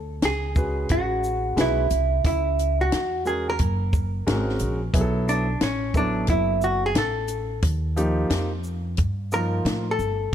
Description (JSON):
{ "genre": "hip hop, jazz-hop", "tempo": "89 BPM", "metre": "4/4", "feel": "swing 65% on 16ths", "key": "unclear", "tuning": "A4 = 440 Hz", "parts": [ { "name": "hollow-body jazz guitar", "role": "melody", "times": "0.0-10.3 s", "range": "C#4 to A#4", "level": "-25 LUFS", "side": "right 1 dB", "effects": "none" }, { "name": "upright bass", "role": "bass", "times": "0.0-10.3 s", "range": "F#1 to A2", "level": "-26 LUFS", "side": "equal", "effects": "none" }, { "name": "compact cocktail drum kit", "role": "drums", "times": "0.2-10.2 s", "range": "hi-hat, kick drum, shaker, snare drum", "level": "-25 LUFS", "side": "left 1 dB", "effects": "none" }, { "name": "dark grand piano", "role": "accompaniment", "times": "0.6-9.8 s", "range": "E#3 to B4", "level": "-28 LUFS", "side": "equal", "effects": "none" } ], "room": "small room ambience", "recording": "none", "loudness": "-21 LUFS", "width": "side -9 dB against mid", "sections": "0.0-4.9 A section; 4.9-10.3 B section", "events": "hollow-body jazz guitar solo 4.9-10.3", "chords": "0.0 Dmaj9 (rootless); 2.2 C#m; 3.6 F#; 4.9 B5; 7.6 D#add9" }